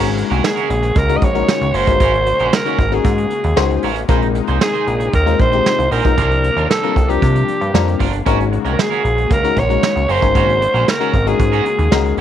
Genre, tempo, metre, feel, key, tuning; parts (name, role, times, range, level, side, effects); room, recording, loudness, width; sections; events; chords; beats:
early-eighties boogie funk; 115 BPM; 4/4; straight; A4 = 440 Hz
FM electric piano; accompaniment; 0.0-12.2 s; G3 to C5; -20 LUFS; left 13 dB; chorus
brassy analog pad; sustained chords; 0.0-12.2 s; C3 to Gb4; -26 LUFS; left 13 dB; chorus
electric guitar at the edge of break-up; riff; 0.0-12.2 s; Db4 to C5; -25 LUFS; right 12 dB; lush chorus
chorused synth bass; bass; 0.0-12.2 s; Gb1 to C3; -18 LUFS; equal
vintage brush drum kit; drums; 0.0-12.2 s; hi-hat, kick drum, snare drum; -18 LUFS; right 2 dB
growling alto saxophone; melody; 0.5-12.2 s; G4 to Eb5; -18 LUFS; right 2 dB
light reverb, small room reverb; 1960s-style stereo with parts hard left and right; -13 LUFS; side -10 dB against mid
0.0-12.2 A section
0.0 Ab9sus4; 4.1 Bb9sus4; 6.2 C9sus4; 8.3 Ab9sus4
0.44 0.96 1.48 | 2.00 2.53 3.05 3.57 | 4.09 4.61 5.13 5.66 | 6.18 6.70 7.22 7.74 | 8.27 8.79 9.31 9.83 | 10.35 10.87 11.40 11.92